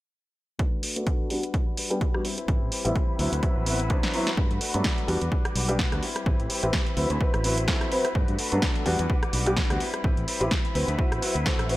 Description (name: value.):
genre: filtered disco house.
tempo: 127 BPM.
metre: 4/4.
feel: swing 56% on 16ths.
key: A dorian.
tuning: A4 = 441 Hz.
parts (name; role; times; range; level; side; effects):
direct-recorded clean electric guitar; riff; 0.6-11.8 s; F#3 to B4; -34 LUFS; left 3 dB; vintage 12-bit sampler grit, sidechain pumping, low-pass filter.
electronic kick drum; drums; 0.6-11.6 s; none; -26 LUFS; equal; studio ambience.
punchy analog drum machine; drums; 0.6-11.8 s; hi-hat, rim click, snare drum; -30 LUFS; right 1 dB; sidechain pumping on hats, studio ambience.
warm grand piano; accompaniment; 1.0-11.8 s; F#3 to B4; -29 LUFS; equal; phaser, vintage 12-bit sampler grit, sidechain pumping, low-pass filter.
warm symphonic string section; sustained chords; 2.5-11.8 s; G3 to E6; -36 LUFS; equal; sidechain pumping, low-pass filter.
fingered electric bass; bass; 2.5-11.8 s; A1 to G2; -28 LUFS; equal; tube saturation, sidechain pumping, low-pass filter.
room: digital ambience.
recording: none.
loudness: -23 LUFS.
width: side -17 dB against mid.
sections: 0.6-4.4 A section; 4.4-11.8 B section.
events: filter sweep 0.6-4.4, 4.4-11.8; drum fill 4.0-4.4.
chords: 0.6 Bm7/A; 1.3 Gmaj7; 2.2 Am9; 3.2 D13; 4.4 Gmaj9; 5.1 Em9; 6.0 Am9; 7.0 D13; 8.2 Gmaj9; 8.9 Em9; 9.8 Am9; 10.8 D13.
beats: | 0.59 1.07 1.54 2.01 | 2.48 2.96 3.43 3.90 | 4.38 4.85 5.32 5.79 | 6.26 6.74 7.21 7.68 | 8.15 8.63 9.10 9.57 | 10.04 10.52 10.99 11.46.